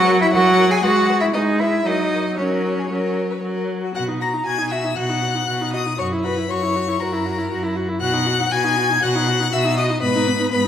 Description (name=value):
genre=quick classical-period movement for string quartet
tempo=118 BPM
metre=4/4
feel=rubato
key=B major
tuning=A4 = 440 Hz
part: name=rich violin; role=second line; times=0.0-10.6 s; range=A#4 to A#5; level=-24 LUFS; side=left 4 dB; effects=none
part: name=rich viola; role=accompaniment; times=0.0-10.7 s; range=F#3 to F#4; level=-22 LUFS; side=right 1 dB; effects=none
part: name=bright cello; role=bass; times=0.0-10.7 s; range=F#2 to G#4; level=-22 LUFS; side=right 2 dB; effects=none
part: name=warm violin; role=melody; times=0.1-10.7 s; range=F#4 to A#6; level=-24 LUFS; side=left 6 dB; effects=none
room=wet recital hall reverb, RT60 1.6 s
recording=heard from further back in the room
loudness=-17 LUFS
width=side -9 dB against mid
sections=0.0-4.0 A section; 4.0-10.7 B section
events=none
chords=0.0 F#; 0.8 E/G#; 1.9 F#; 4.0 B; 6.0 F#7; 8.0 B; 10.0 G#m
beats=0.34 0.84 1.34 | 1.86 2.39 2.91 3.43 | 3.95 4.46 4.97 5.48 | 5.99 6.50 7.01 7.51 | 8.01 8.52 9.02 9.52 | 10.02 10.53